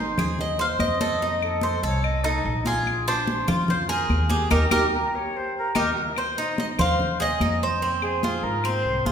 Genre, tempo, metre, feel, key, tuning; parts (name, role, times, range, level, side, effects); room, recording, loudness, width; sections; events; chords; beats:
latin, Cuban son and guajira; 145 BPM; 4/4; straight; Ab major; A4 = 439 Hz
Cuban tres; melody; 0.0-8.4 s; G4 to F5; -27 LUFS; equal
Cuban tres; arpeggios; 0.0-9.1 s; C4 to C5; -26 LUFS; right 1 dB
upright bass; bass; 0.0-9.1 s; Ab1 to Ab2; -28 LUFS; equal
claves; percussion; 0.2-8.8 s; -35 LUFS; left 5 dB
congas; percussion; 0.2-9.1 s; -29 LUFS; left 1 dB
jazz flute; second line; 1.4-9.1 s; G4 to Eb5; -29 LUFS; left 1 dB
wet recital hall reverb, RT60 1.8 s; recorded in a church or concert hall; -21 LUFS; side -8 dB against mid
0.0-6.2 A section; 6.2-9.1 B section
band accent 4.5-6.2
0.0 Ab; 1.2 F7; 2.9 Bb7; 4.5 Eb; 6.2 Ab; 7.8 Fm
0.39 0.80 | 1.21 1.62 2.04 2.45 | 2.86 3.27 3.69 4.10 | 4.51 4.93 5.34 5.75 | 6.16 6.58 6.99 7.40 | 7.82 8.23 8.64 9.05